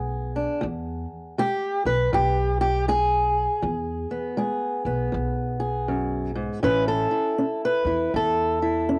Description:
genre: acoustic country blues, solo or duo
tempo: 80 BPM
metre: 4/4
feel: swing 62% on 8ths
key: E major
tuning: A4 = 440 Hz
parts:
  - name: fingerpicked steel-string acoustic guitar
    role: melody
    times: 0.0-9.0 s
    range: E2 to B4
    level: -25 LUFS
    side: equal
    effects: cassette tape
  - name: upright bass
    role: bass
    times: 0.0-9.0 s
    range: A1 to E2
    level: -31 LUFS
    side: equal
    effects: none
room: light reverb, small room ambience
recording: home recording on cassette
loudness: -25 LUFS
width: mono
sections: 0.0-9.0 A section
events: steel-string acoustic guitar solo 0.0-9.0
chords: 0.0 E; 6.6 A

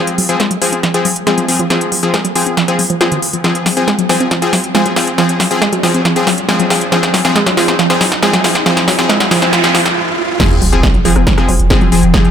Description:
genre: driving peak-time techno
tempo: 138 BPM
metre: 4/4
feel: straight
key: F phrygian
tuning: A4 = 436 Hz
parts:
  - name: supersaw stab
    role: stabs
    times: 0.0-12.3 s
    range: F3 to Ab4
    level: -15 LUFS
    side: left 3 dB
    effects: sidechain pumping, dub echo
  - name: riser, noise sweep and sub drop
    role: sound effects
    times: 0.7-12.1 s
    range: none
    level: -21 LUFS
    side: right 1 dB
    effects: none
  - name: techno drum kit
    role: drums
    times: 0.1-12.3 s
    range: crash cymbal, hi-hat, rim click, snare drum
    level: -16 LUFS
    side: equal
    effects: high-pass filter on snare, sidechain pumping on hats, high-pass filter on hats, sidechain pumping on cymbals, high-pass filter on cymbals
  - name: warbly dusty pluck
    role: riff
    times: 0.2-12.2 s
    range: Eb3 to F4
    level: -16 LUFS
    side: right 1 dB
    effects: chorus, tube saturation, sidechain pumping, digital delay
  - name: deep dark ambient pad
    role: drone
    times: 11.0-12.3 s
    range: F3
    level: -17 LUFS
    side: left 1 dB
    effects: chorus, built-in reverb, sidechain pumping
  - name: electronic kick drum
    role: drums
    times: 10.4-12.2 s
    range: none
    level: -13 LUFS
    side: equal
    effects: none
  - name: warm sub bass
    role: bass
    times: 10.5-12.3 s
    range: F1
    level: -14 LUFS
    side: equal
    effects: overdrive, sidechain pumping, low-pass filter
room: moderate lush hall reverb, RT60 1.7 s, digital ambience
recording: none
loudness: -10 LUFS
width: side -8 dB against mid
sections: 0.0-10.4 A section; 10.4-12.3 B section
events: build-up 0.0-10.4; drum fill 0.0-10.0; filter sweep on synth arpeggio sound 0.0-10.4; riser 0.7-10.4; noise sweep 8.7-10.4; stop 10.0-10.4; drop 10.4-12.3; impact 10.4-12.1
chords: 0.0 Fm

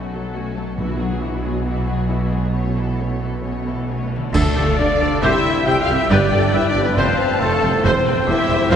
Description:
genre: cinematic, heroic adventure film score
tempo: 137 BPM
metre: 4/4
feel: straight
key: unclear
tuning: A4 = 440 Hz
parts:
  - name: warm symphonic violin section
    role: melody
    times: 0.0-8.8 s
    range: F#4 to G5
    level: -27 LUFS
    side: left 3 dB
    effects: none
  - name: dark symphonic violin section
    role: second line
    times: 0.0-8.8 s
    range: A3 to A5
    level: -28 LUFS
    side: left 2 dB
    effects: none
  - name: rich symphonic viola section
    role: accompaniment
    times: 0.0-8.8 s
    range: E3 to C5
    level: -26 LUFS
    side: right 1 dB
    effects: none
  - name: concert harp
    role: arpeggios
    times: 0.0-8.8 s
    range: E2 to C5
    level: -28 LUFS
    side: left 3 dB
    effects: none
  - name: dark symphonic cello section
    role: bass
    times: 0.0-8.8 s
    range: E2 to D3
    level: -24 LUFS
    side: right 2 dB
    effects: none
  - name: rich symphonic double bass section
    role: bass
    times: 0.0-8.8 s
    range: E1 to D2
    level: -24 LUFS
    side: right 2 dB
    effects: none
  - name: cymbal swell, clash cymbals and concert bass drum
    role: percussion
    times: 0.8-5.2 s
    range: none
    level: -27 LUFS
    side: equal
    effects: none
  - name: timpani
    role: percussion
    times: 0.8-1.4 s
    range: B2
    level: -32 LUFS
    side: equal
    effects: none
  - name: bright clarinet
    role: second line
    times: 4.3-8.8 s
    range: G4 to E5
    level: -27 LUFS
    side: equal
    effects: none
  - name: mellow hollow flute section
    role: second line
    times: 4.3-8.8 s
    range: A4 to G5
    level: -27 LUFS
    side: left 2 dB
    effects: none
  - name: warm oboe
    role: second line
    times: 4.3-8.8 s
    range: A4 to G5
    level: -26 LUFS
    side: equal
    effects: none
  - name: mellow French horn section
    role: sustained chords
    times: 4.3-8.8 s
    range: A3 to G4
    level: -21 LUFS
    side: left 1 dB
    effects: none
  - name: warm tuba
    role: bass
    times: 4.3-8.8 s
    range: E1 to D2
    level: -26 LUFS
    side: right 2 dB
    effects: none
room: wet cathedral reverb, RT60 4.1 s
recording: recorded in a church or concert hall, nothing above 10.6 kHz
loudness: -16 LUFS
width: side -8 dB against mid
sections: 0.0-4.3 A section; 4.3-8.8 B section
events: band accent 4.3-4.8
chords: 0.0 F#m/B; 0.8 Eadd9/B; 2.5 A/B; 4.3 Dm; 5.2 C; 6.1 G; 7.0 F; 7.8 C/E

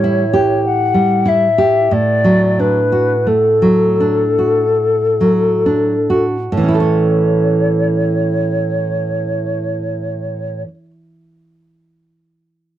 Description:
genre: romantic duo for flute and classical guitar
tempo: 33-52 BPM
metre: 3/4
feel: rubato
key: A major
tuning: A4 = 440 Hz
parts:
  - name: mellow hollow silver concert flute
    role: melody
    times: 0.0-10.6 s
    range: A4 to F#5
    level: -16 LUFS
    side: left 2 dB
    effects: none
  - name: nylon-string guitar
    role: accompaniment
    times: 0.0-10.9 s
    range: A2 to C#5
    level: -15 LUFS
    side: right 2 dB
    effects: none
room: light reverb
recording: dry, close 1970s-style studio recording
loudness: -12 LUFS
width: side -12 dB against mid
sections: 0.0-6.5 A section; 6.5-11.3 B section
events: slowing down 0.0-6.5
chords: 0.0 A5; 1.9 D/A; 6.5 A

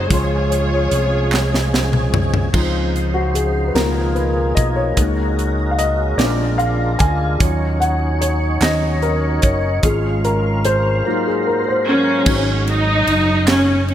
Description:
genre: slow gospel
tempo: 49 BPM (dotted quarters)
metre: 6/8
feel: straight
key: Db major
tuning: A4 = 440 Hz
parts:
  - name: warm studio string section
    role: melody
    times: 0.0-2.1, 11.9-13.9 s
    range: Gb3 to Db5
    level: -18 LUFS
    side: equal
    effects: none
  - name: dark grand piano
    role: accompaniment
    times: 0.0-13.9 s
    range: Ab2 to C6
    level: -21 LUFS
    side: left 2 dB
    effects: lush chorus
  - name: tonewheel organ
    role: sustained chords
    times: 0.0-12.3 s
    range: Ab2 to F5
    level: -25 LUFS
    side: right 1 dB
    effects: slow rotary speaker, overdrive, chorus vibrato
  - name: fingered electric bass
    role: bass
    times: 0.0-13.9 s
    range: Gb1 to Eb2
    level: -19 LUFS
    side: equal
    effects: none
  - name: crisp fusion drum kit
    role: drums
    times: 0.1-13.9 s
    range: crash cymbal, hi-hat, kick drum, ride cymbal, snare drum, toms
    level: -20 LUFS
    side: equal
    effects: gated reverb
  - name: group handclap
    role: percussion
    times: 1.3-1.7, 8.6-9.0, 13.5-13.9 s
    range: none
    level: -28 LUFS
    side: right 6 dB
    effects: none
  - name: mellow French horn section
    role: sustained chords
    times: 2.5-12.3 s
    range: Ab2 to C5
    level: -29 LUFS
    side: right 1 dB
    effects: none
room: moderate lush hall reverb, RT60 3.0 s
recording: bright 1980s-style digital production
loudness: -15 LUFS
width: side -11 dB against mid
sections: 0.0-2.5 A section; 2.5-12.3 B section; 12.3-13.9 A section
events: drum fill 1.3-2.5; grand piano solo 2.5-12.3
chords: 0.1 Dbmaj7; 2.5 Dbmaj9; 3.8 Db13; 5.0 Gb69/Db; 6.2 Bb7; 7.4 Ebm9; 9.8 Db/Ab; 11.1 Ab13; 12.3 Ab7sus4

